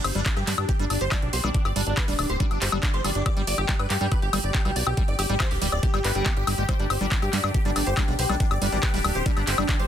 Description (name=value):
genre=psychedelic trance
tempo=140 BPM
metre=4/4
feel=straight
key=G major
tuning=A4 = 439 Hz
part: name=dense compressed supersaw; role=melody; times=0.0-9.9 s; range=D4 to D5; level=-30 LUFS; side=right 2 dB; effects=phaser, sidechain pumping, ping-pong delay
part: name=bubbling stepped-filter texture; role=sustained chords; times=0.0-9.9 s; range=G4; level=-33 LUFS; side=left 3 dB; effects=chorus, built-in reverb, sidechain pumping
part: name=liquid acid bass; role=riff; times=0.0-9.8 s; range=G3 to G4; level=-32 LUFS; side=right 1 dB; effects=chorus, auto-pan, sidechain pumping, ping-pong delay
part: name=plucky analog bass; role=bass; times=0.0-9.9 s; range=D1 to G2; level=-27 LUFS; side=equal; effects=none
part: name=drum and bass drum kit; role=drums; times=0.0-9.9 s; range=handclaps, hi-hat, woodblock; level=-28 LUFS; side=left 2 dB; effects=overdrive
part: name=electronic kick drum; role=drums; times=0.3-9.8 s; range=none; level=-24 LUFS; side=equal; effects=overdrive
room=digital ambience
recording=dense, heavily limited modern master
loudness=-21 LUFS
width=side -10 dB against mid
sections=0.0-9.9 A section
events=none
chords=0.0 G5